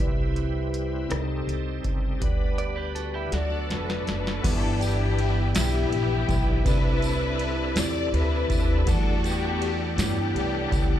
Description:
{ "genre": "slow gospel", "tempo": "54 BPM (dotted quarters)", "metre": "6/8", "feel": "straight", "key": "G major", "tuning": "A4 = 441 Hz", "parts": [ { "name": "mellow tine electric piano", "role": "accompaniment", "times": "0.0-11.0 s", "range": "G2 to F#5", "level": "-31 LUFS", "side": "left 2 dB", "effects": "phaser, slapback echo" }, { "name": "bright tonewheel organ", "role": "sustained chords", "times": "0.0-11.0 s", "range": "E3 to F#5", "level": "-34 LUFS", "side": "right 2 dB", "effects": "slow rotary speaker, overdrive, chorus vibrato" }, { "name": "upright bass", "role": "bass", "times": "0.0-11.0 s", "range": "F1 to G2", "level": "-27 LUFS", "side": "equal", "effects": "none" }, { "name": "booming analog drum machine", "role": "drums", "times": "0.0-10.9 s", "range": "crash cymbal, hi-hat, kick drum, ride cymbal, rim click, snare drum", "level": "-27 LUFS", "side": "equal", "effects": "overdrive" }, { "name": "clean electric guitar", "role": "second line", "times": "2.6-4.4 s", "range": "B3 to D5", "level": "-35 LUFS", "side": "right 6 dB", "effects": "slapback echo" }, { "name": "dark studio string section", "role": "melody", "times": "3.3-11.0 s", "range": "B3 to D5", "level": "-29 LUFS", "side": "left 3 dB", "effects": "slapback echo" }, { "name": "tambourine", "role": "percussion", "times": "4.4-11.0 s", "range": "none", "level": "-38 LUFS", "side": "right 4 dB", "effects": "none" } ], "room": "little or no reverb", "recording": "live gig heard through the venue's PA, club reverb", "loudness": "-23 LUFS", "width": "side -11 dB against mid", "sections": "0.0-4.4 A section; 4.4-11.0 B section", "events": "drum fill 3.3-4.4", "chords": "0.0 Cmaj7; 1.1 Cm6; 2.2 G/D; 3.3 D; 4.4 G6; 6.7 C69; 8.9 Em11", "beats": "1.10 | 2.22 3.33 | 4.44 5.55 | 6.66 7.77 | 8.87 9.98" }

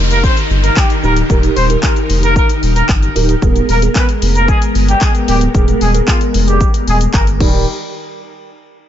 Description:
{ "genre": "dance-pop", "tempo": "113 BPM", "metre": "4/4", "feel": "straight", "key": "Eb major", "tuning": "A4 = 440 Hz", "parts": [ { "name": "mellow tine electric piano", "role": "accompaniment", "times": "0.0-7.7 s", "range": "Cb4 to Bb4", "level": "-20 LUFS", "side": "right 6 dB", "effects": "ensemble chorus, sidechain pumping, low-pass filter, analog delay" }, { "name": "string machine, violins", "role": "sustained chords", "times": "0.0-7.7 s", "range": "Eb3 to Bb4", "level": "-20 LUFS", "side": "left 1 dB", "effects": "ensemble chorus, sidechain pumping, low-pass filter" }, { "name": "saturated sub bass", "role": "bass", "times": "0.0-7.7 s", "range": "D1 to G1", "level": "-14 LUFS", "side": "equal", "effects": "sidechain pumping" }, { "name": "downlifter", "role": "sound effects", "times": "0.0-3.4 s", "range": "none", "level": "-25 LUFS", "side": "left 1 dB", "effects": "none" }, { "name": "warm horn section", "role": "melody", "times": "0.1-7.7 s", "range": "F3 to C5", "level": "-18 LUFS", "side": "equal", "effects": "sidechain pumping, low-pass filter, analog delay" }, { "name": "pop drum kit", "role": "drums", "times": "0.1-7.5 s", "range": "crash cymbal, handclaps, hi-hat, kick drum, shaker", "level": "-14 LUFS", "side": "equal", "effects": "none" } ], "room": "little or no reverb", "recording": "echo-heavy mix, nothing above 7.7 kHz", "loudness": "-10 LUFS", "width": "side -10 dB against mid", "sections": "0.0-7.7 A section; 7.7-8.9 B section", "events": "filter sweep 0.0-7.7", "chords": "0.0 Eb; 3.4 Abmadd9; 7.4 Eb; 7.7 N.C.", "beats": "0.24 0.77 | 1.30 1.83 2.36 2.89 | 3.42 3.95 4.49 5.02 | 5.55 6.08 6.61 7.14" }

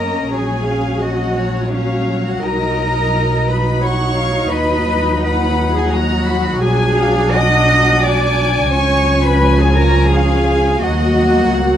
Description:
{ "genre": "classical, slow romantic movement for string orchestra", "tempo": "86 BPM", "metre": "3/4", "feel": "rubato", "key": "unclear", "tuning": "A4 = 439 Hz", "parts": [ { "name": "warm chamber violin section", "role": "melody", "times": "0.0-11.8 s", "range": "C#5 to B5", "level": "-23 LUFS", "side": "left 3 dB", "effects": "none" }, { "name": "warm chamber violin section", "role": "second line", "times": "0.0-11.8 s", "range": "C#5 to D#6", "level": "-22 LUFS", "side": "left 6 dB", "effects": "none" }, { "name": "dark chamber viola section", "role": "accompaniment", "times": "0.0-11.8 s", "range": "E#3 to D#4", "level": "-19 LUFS", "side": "equal", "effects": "none" }, { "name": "dark chamber double bass section", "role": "bass", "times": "0.0-11.8 s", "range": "A#1 to F#2", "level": "-18 LUFS", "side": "right 1 dB", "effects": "none" }, { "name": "warm chamber cello section", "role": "bass", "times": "0.0-11.8 s", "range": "C#4 to D#5", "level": "-18 LUFS", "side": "right 2 dB", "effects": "none" } ], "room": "light reverb", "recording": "vinyl crackle", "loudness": "-13 LUFS", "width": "side -10 dB against mid", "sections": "0.0-11.8 A section", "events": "none", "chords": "0.3 F#/A#; 2.4 B; 4.5 B/D#; 6.6 G#m7b5/B; 8.7 C#; 10.8 D#m", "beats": "| 0.33 1.03 1.73 | 2.43 3.13 3.83 | 4.53 5.22 5.92 | 6.62 7.36 8.04 | 8.72 9.41 10.12 | 10.82 11.53" }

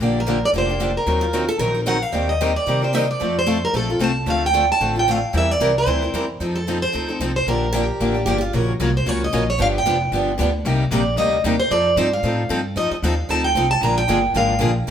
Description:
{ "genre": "acoustic string swing (jazz manouche)", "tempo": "226 BPM", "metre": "4/4", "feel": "swing 56% on 8ths", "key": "Bb major", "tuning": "A4 = 441 Hz", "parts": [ { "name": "picked steel-string acoustic guitar", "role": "accompaniment", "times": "0.0-14.9 s", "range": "C3 to Bb4", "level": "-24 LUFS", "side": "left 3 dB", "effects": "none" }, { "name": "picked steel-string acoustic guitar", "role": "accompaniment", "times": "0.0-14.9 s", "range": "C3 to C5", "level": "-26 LUFS", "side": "right 4 dB", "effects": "none" }, { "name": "upright bass", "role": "bass", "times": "0.0-14.9 s", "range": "F1 to C3", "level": "-24 LUFS", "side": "equal", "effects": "none" }, { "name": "picked plugged-in steel-string acoustic guitar", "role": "melody", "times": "0.2-14.7 s", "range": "A4 to Bb5", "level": "-21 LUFS", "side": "right 1 dB", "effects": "none" }, { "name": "picked steel-string acoustic guitar", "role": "second line", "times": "1.2-1.8, 7.7-8.5 s", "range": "F4 to Bb4", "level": "-25 LUFS", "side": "right 1 dB", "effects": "none" } ], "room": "moderate large studio reverb, RT60 1.1 s", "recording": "band playing live in one room", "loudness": "-17 LUFS", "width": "side -9 dB against mid", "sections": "0.0-8.5 A section; 8.5-14.9 B section", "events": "none", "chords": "0.0 Bb6; 1.1 Ebm6; 2.1 Cm7/Eb; 3.2 F; 4.3 Dm7; 5.3 C7; 6.4 F7; 7.5 Bb6; 8.5 Gbmaj7; 9.6 G7; 10.6 Cm7; 11.7 F7; 13.8 Bb7", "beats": "| 0.00 0.26 0.53 0.80 | 1.06 1.33 1.60 1.86 | 2.13 2.40 2.67 2.93 | 3.20 3.47 3.73 4.00 | 4.27 4.54 4.80 5.07 | 5.34 5.60 5.87 6.14 | 6.40 6.67 6.93 7.20 | 7.47 7.73 8.00 8.26 | 8.53 8.79 9.06 9.32 | 9.59 9.85 10.12 10.38 | 10.64 10.91 11.17 11.44 | 11.70 11.96 12.23 12.49 | 12.76 13.02 13.28 13.55 | 13.81 14.07 14.34 14.60 | 14.87" }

